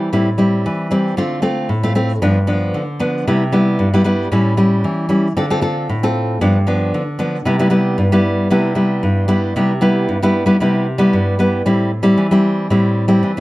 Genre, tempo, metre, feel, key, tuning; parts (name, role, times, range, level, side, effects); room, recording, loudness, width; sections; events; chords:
samba; 114 BPM; 4/4; straight; C major; A4 = 439 Hz
nylon-string guitar; solo; 0.0-13.4 s; G2 to A4; -14 LUFS; equal
moderate studio reverb, RT60 0.8 s; -14 LUFS; side -18 dB against mid
0.0-11.7 A section; 11.7-13.4 B section
0.0 Am7; 1.2 Dm7; 2.2 G7; 3.3 Cmaj7; 4.3 A7; 5.4 Dm7; 6.4 G7; 7.5 Cmaj7; 11.7 Am7